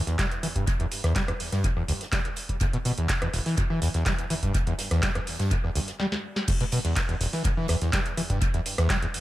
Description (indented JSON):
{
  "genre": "acid house",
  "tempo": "124 BPM",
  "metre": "4/4",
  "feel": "straight",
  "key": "E minor",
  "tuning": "A4 = 438 Hz",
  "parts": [
    { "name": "overdriven acid bass", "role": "riff", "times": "0.1-9.1 s", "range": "E1 to G3", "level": "-27 LUFS", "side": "equal", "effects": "tube saturation, lush chorus, cassette tape, tape echo" },
    { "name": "booming analog drum machine", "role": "drums", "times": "0.1-9.2 s", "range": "crash cymbal, handclaps, hi-hat, rim click, snare drum", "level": "-31 LUFS", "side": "right 1 dB", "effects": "tape echo" },
    { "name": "warm soul drum kit", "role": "drums", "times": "0.1-9.2 s", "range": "hi-hat, snare drum", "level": "-41 LUFS", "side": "right 3 dB", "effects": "none" },
    { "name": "electronic kick drum", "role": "drums", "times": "0.2-9.0 s", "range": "none", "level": "-28 LUFS", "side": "equal", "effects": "none" }
  ],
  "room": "light reverb",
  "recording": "echo-heavy mix",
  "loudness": "-24 LUFS",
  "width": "side -16 dB against mid",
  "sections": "0.0-6.5 A section; 6.5-9.2 B section",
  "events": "drum fill 6.0-6.5; band accent 6.4; drop 6.5-9.2",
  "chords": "none"
}